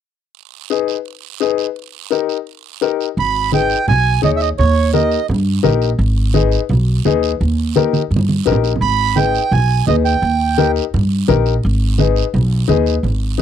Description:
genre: latin, cumbia.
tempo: 170 BPM.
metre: 4/4.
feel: straight.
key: G# harmonic minor.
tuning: A4 = 440 Hz.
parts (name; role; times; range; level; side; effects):
guiro; percussion; 0.3-13.4 s; none; -31 LUFS; right 23 dB; none.
warm upright piano; accompaniment; 0.7-13.4 s; D#4 to C#5; -17 LUFS; left 13 dB; none.
accordion; melody; 3.2-5.3, 8.8-10.7 s; C#5 to B5; -17 LUFS; right 8 dB; none.
upright bass; bass; 3.2-13.4 s; G#1 to G2; -16 LUFS; right 1 dB; none.
congas; percussion; 3.2-13.4 s; none; -19 LUFS; right 4 dB; none.
room: little or no reverb.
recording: dry, close 1970s-style studio recording.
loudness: -13 LUFS.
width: side -9 dB against mid.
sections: 0.3-3.2 A section; 3.2-13.4 B section.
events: drum fill 7.9-8.8.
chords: 0.3 G#m; 1.8 D#; 3.2 G#m; 4.6 D#7; 6.0 G#m; 7.4 D#; 8.8 G#m; 10.2 D#; 11.6 G#m.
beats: | 0.34 0.70 1.05 1.41 | 1.76 2.11 2.47 2.82 | 3.17 3.53 3.88 4.23 | 4.58 4.94 5.29 5.64 | 6.00 6.35 6.70 7.05 | 7.41 7.76 8.11 8.46 | 8.82 9.17 9.52 9.87 | 10.23 10.58 10.93 11.28 | 11.64 11.99 12.34 12.69 | 13.04 13.40.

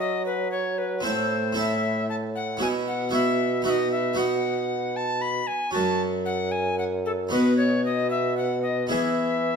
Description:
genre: classical, renaissance-style consort dance.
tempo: 114 BPM.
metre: 3/4.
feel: straight.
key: unclear.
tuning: A4 = 440 Hz.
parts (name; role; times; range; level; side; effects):
alto recorder; melody; 0.0-9.6 s; A4 to B5; -28 LUFS; left 3 dB; none.
harpsichord; accompaniment; 0.0-9.6 s; F#2 to A4; -26 LUFS; right 1 dB; none.
mellow bassoon; bass; 0.0-9.6 s; F#2 to F#3; -28 LUFS; equal; none.
room: wet stone room reverb, RT60 1.1 s.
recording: none.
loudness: -22 LUFS.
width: side -6 dB against mid.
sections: 0.0-9.6 A section.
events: none.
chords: 0.0 F#m; 1.0 Am; 2.6 Bsus4; 3.7 B; 5.8 F#5; 7.3 B; 8.9 E.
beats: 0.00 0.52 | 1.04 1.57 2.09 | 2.61 3.13 3.66 | 4.18 4.70 5.23 | 5.75 6.28 6.80 | 7.32 7.85 8.38 | 8.92 9.45.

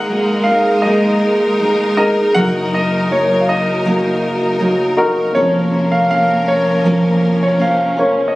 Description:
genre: pop ballad.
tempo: 80 BPM.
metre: 4/4.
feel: straight.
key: unclear.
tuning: A4 = 439 Hz.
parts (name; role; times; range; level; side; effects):
clear baby grand piano; melody; 0.0-8.4 s; Db5 to Gb5; -18 LUFS; equal; none.
dark upright piano; accompaniment; 0.0-8.4 s; F1 to Db5; -17 LUFS; equal; none.
clear studio string section; sustained chords; 0.0-8.4 s; F3 to Bb4; -20 LUFS; left 1 dB; none.
fingerpicked steel-string acoustic guitar; arpeggios; 0.0-8.4 s; F2 to C5; -19 LUFS; right 1 dB; none.
room: light reverb, small room ambience.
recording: recorded on a phone in the room, club reverb.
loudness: -12 LUFS.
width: side -18 dB against mid.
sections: 0.0-8.4 A section.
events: none.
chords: 0.0 Absus2; 2.4 Ebm/Gb; 5.4 Bbmadd9/F.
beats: 0.10 0.85 1.60 | 2.35 3.10 3.85 4.61 | 5.36 6.11 6.86 7.61.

